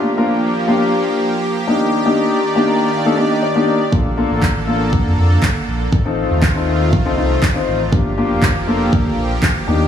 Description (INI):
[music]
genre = dance-pop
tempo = 120 BPM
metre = 4/4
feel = straight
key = unclear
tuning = A4 = 439 Hz
[part]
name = warm concert grand piano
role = accompaniment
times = 0.0-9.9 s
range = Bb3 to Bb5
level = -17 LUFS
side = left 2 dB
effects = sidechain pumping
[part]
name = supersaw pad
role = sustained chords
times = 0.0-9.9 s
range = D3 to D5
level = -21 LUFS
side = right 2 dB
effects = sidechain pumping
[part]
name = sub bass with octave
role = bass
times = 3.9-9.9 s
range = F1 to F2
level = -19 LUFS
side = equal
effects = sidechain pumping
[part]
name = deep house drum kit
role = drums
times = 3.9-9.6 s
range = handclaps, kick drum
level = -16 LUFS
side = equal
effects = none
[sound]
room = light reverb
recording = small room ambience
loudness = -14 LUFS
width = side -9 dB against mid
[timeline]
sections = 0.0-9.9 A section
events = grand piano fill 2.4-3.9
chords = 0.0 Gm7; 1.7 Ebmaj7; 3.9 Bbmaj7; 5.9 F7/A; 7.9 Gm7